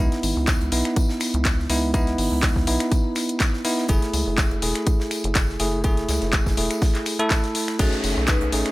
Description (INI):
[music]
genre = deep house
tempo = 123 BPM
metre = 4/4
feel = swing 54% on 16ths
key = C# minor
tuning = A4 = 439 Hz
[part]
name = bell-like tine electric piano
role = stabs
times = 0.0-8.7 s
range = A3 to A4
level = -24 LUFS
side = right 1 dB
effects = sidechain pumping, tape echo
[part]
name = rubbery square bass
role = bass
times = 0.0-8.6 s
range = E1 to C#2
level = -26 LUFS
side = equal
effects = sidechain pumping
[part]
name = gated 80s drum kit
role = drums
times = 0.1-8.7 s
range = hi-hat, snare drum, tambourine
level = -35 LUFS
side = equal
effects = sidechain pumping on hats, high-pass filter on hats, high-pass filter on snare, sidechain pumping on perc, high-pass filter on perc, high-pass filter on room
[part]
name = house drum kit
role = drums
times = 0.1-8.7 s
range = crash cymbal, finger snaps, handclaps, hi-hat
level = -27 LUFS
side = left 2 dB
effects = none
[part]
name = electronic kick drum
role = drums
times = 0.5-8.4 s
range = none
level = -21 LUFS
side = equal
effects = none
[part]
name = vibraphone with medium hard mallets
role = melody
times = 7.8-8.5 s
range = D#4 to B4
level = -29 LUFS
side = left 1 dB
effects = tape echo
[part]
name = downlifter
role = sound effects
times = 7.8-8.7 s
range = none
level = -30 LUFS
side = left 1 dB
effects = none
[sound]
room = small room ambience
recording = none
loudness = -19 LUFS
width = side -18 dB against mid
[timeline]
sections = 0.0-7.8 A section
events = none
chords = 0.0 C#m9; 3.9 F#m9; 7.8 B13